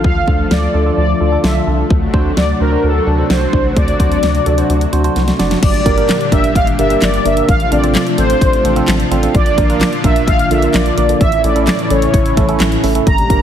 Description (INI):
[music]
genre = synth-pop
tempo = 129 BPM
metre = 4/4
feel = straight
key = D minor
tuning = A4 = 440 Hz
[part]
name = mellow synth brass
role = melody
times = 0.0-13.4 s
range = A4 to Bb5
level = -17 LUFS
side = left 1 dB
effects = chorus, ping-pong delay
[part]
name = warm analog pad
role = sustained chords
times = 0.0-13.4 s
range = A2 to A4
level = -19 LUFS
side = left 1 dB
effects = chorus
[part]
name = rubbery square bass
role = bass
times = 0.0-13.4 s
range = F#1 to D2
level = -17 LUFS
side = equal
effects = none
[part]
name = pop drum kit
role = drums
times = 0.0-13.4 s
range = crash cymbal, handclaps, hi-hat, kick drum, snare drum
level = -16 LUFS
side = equal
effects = none
[part]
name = tine electric piano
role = accompaniment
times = 0.3-13.4 s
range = A3 to D5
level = -19 LUFS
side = right 5 dB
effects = phaser
[sound]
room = moderate lush hall reverb, RT60 1.9 s, digital ambience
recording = heavily compressed radio sound, multiband compression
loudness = -11 LUFS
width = side -9 dB against mid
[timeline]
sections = 0.0-5.6 A section; 5.6-13.4 B section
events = drum fill 5.2-5.6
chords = 0.0 Dm; 1.9 D7; 5.6 Gm; 7.5 F6/A; 9.3 Bb; 11.2 A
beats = | 0.04 0.51 0.97 1.44 | 1.90 2.37 2.83 3.30 | 3.77 4.23 4.70 5.16 | 5.62 6.09 6.55 7.02 | 7.49 7.95 8.42 8.88 | 9.35 9.81 10.28 10.74 | 11.21 11.67 12.14 12.60 | 13.07